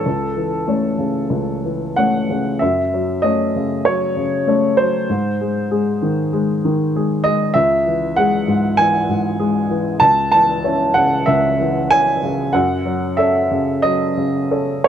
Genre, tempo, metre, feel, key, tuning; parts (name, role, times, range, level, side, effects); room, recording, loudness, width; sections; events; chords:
neoclassical minimalist piano; 96 BPM; 4/4; rubato; A4 = 440 Hz
warm upright piano; solo; 0.0-14.9 s; C#2 to A5; -15 LUFS; equal
moderate spring reverb, RT60 1.3 s; -15 LUFS; side -9 dB against mid
0.0-14.9 A section
0.1 A/C#; 2.6 F#m; 5.1 G#; 7.5 C#m; 10.0 A/C#; 12.5 F#m